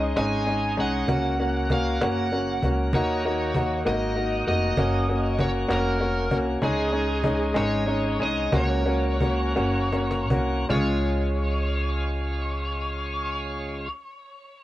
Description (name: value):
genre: six-eight pop ballad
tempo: 50-65 BPM (dotted quarters)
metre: 6/8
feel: straight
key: Db major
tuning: A4 = 440 Hz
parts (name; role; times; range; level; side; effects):
- overdriven slide guitar; melody; 0.0-13.9 s; Ab4 to Ab5; -30 LUFS; right 1 dB; cassette tape, tape echo
- clear baby grand piano; accompaniment; 0.0-13.9 s; Ab3 to Gb4; -26 LUFS; left 1 dB; cassette tape
- bright tonewheel organ; sustained chords; 0.0-13.9 s; Db3 to Gb4; -34 LUFS; right 1 dB; overdrive, slow rotary speaker, cassette tape
- upright bass; bass; 0.0-13.9 s; F1 to Eb2; -28 LUFS; equal; none
- cajon; drums; 0.2-10.9 s; none; -28 LUFS; equal; cassette tape
room: light reverb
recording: home recording on cassette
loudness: -22 LUFS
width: side -15 dB against mid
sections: 0.0-10.7 A section; 10.7-14.6 B section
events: slowing down 6.6-10.7; drum fill 9.6-10.7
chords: 0.0 Dbsus2; 1.1 Gb/Db; 2.9 Ebm; 4.8 Gb; 6.6 Dbsus2; 8.5 Gb/Db; 10.7 Db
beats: 0.16 | 1.09 2.01 | 2.93 3.86 | 4.78 5.70 | 6.62 7.56 | 8.53 9.56 | 10.70 11.90 | 13.09